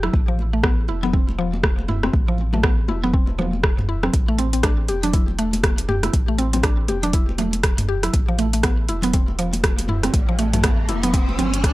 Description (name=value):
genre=afro house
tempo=120 BPM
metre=4/4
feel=swing 59% on 16ths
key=A minor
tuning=A4 = 441 Hz
part: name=mallet-like synth pluck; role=arpeggios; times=0.0-11.5 s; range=F3 to G4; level=-24 LUFS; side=equal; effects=chorus, sidechain pumping, tape echo
part: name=warm sub bass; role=bass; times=0.0-11.7 s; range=E1 to A1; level=-24 LUFS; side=equal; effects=tube saturation, sidechain pumping
part: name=afro-pop drum kit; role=drums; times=0.0-11.7 s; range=hi-hat, rim click, toms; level=-23 LUFS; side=equal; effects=overdrive
part: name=congas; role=percussion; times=0.0-11.6 s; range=none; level=-28 LUFS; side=left 2 dB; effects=none
part: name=electronic kick drum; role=drums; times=0.1-11.7 s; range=none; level=-19 LUFS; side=equal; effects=overdrive
part: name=riser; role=sound effects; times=9.3-11.7 s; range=none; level=-30 LUFS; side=equal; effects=none
room=little or no reverb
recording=dry, gritty hardware recording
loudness=-18 LUFS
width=side -18 dB against mid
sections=0.0-11.7 A section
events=riser 9.3-11.7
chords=0.1 N.C.; 4.1 A7(no3); 8.1 F (rootless)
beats=| 0.14 0.64 1.14 1.64 | 2.14 2.64 3.14 3.64 | 4.14 4.64 5.14 5.64 | 6.14 6.64 7.14 7.64 | 8.14 8.64 9.14 9.64 | 10.14 10.64 11.14 11.64